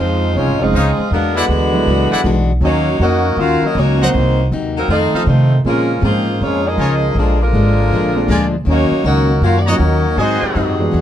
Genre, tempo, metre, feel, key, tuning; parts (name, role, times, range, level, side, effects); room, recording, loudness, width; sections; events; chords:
jazz; 159 BPM; 4/4; swing 66% on 8ths; A4 = 440 Hz
clear saxophone section; melody; 0.0-11.0 s; F3 to F5; -18 LUFS; left 1 dB
mellow trombone section; second line; 0.0-11.0 s; C3 to Gb4; -21 LUFS; right 1 dB
picked plugged-in steel-string acoustic guitar; accompaniment; 0.0-11.0 s; F2 to G#4; -21 LUFS; left 3 dB
upright bass; bass; 0.0-11.0 s; F1 to C3; -16 LUFS; equal
warm grand piano; accompaniment; 0.6-11.0 s; Fb3 to Gb4; -21 LUFS; right 3 dB
brilliant trumpet section; stabs; 0.7-10.8 s; Eb4 to Bb5; -20 LUFS; left 1 dB
moderate club reverb, RT60 0.5 s; dark, warm production; -12 LUFS; side -10 dB against mid
0.0-11.0 A section
0.0 Dbmaj9; 1.1 E9; 2.6 Ebm7; 4.1 Cm7b5; 4.9 F7; 5.6 Bbm7; 7.2 Bb7; 8.7 Ebm7; 10.2 Ab7